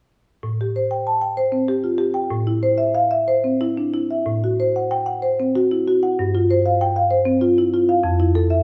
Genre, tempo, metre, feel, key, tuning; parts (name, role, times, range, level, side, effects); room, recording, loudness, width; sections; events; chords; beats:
classical, contemporary piece for solo marimba; 64 BPM (dotted quarters); 6/8; rubato; A minor; A4 = 440 Hz
marimba with medium mallets; solo; 0.4-8.6 s; F2 to A5; -19 LUFS; equal
wet recital hall reverb, RT60 1.5 s; -20 LUFS; mono
0.4-4.3 A section; 4.3-8.6 B section
0.4 Am7; 2.3 C6/A; 4.3 Am6; 6.2 G7sus4; 8.0 Fmaj7
| 0.43 1.38 | 2.31 3.27 | 4.27 5.23 | 6.18 7.11 | 8.03